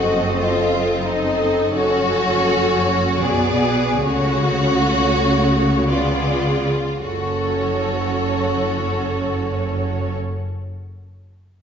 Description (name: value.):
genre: classical, slow romantic movement for string orchestra.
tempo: 52-89 BPM.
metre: 3/4.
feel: rubato.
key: F# minor.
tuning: A4 = 440 Hz.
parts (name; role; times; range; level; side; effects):
warm studio violin section; melody; 0.0-10.1 s; C#5 to D#5; -26 LUFS; left 2 dB; none.
rich studio violin section; second line; 0.0-10.1 s; D#4 to G#4; -22 LUFS; left 1 dB; none.
rich studio viola section; accompaniment; 0.0-10.1 s; A3 to A4; -22 LUFS; equal; none.
rich studio cello section; bass; 0.0-10.1 s; F#2 to C#3; -23 LUFS; right 1 dB; none.
rich studio double bass section; bass; 0.0-10.1 s; F#1 to C#2; -27 LUFS; right 3 dB; none.
room: wet recital hall reverb, RT60 1.7 s.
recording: recorded in a church or concert hall, nothing above 7.6 kHz.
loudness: -17 LUFS.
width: side -7 dB against mid.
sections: 0.0-7.0 A section; 7.0-11.6 B section.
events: slowing down 0.7-7.0.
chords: 0.0 F#dim7; 1.7 F#m; 3.2 Bm; 4.0 F#m/C#; 5.9 C#7b9; 7.0 F#m.